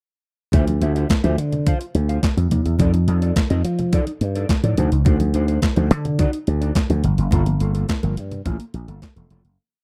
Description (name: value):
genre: early-eighties boogie funk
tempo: 106 BPM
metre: 4/4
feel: straight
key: D minor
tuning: A4 = 440 Hz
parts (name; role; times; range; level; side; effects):
- mellow electric guitar; riff; 0.5-9.5 s; Bb3 to F5; -31 LUFS; equal; analog chorus
- slap bass with an envelope filter; bass; 0.5-9.6 s; E1 to F3; -21 LUFS; equal; none
- crisp 8-bit digital drum machine; drums; 0.5-9.6 s; handclaps, hi-hat, kick drum, snare drum; -22 LUFS; equal; overdrive
- congas; percussion; 0.5-9.4 s; none; -29 LUFS; equal; none
room: little or no reverb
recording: rough home demo mix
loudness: -20 LUFS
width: mono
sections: 0.5-9.6 breakdown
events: fade-out 7.3-9.6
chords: 0.5 Dm9; 2.8 F13; 4.8 D7b9; 7.0 Gm9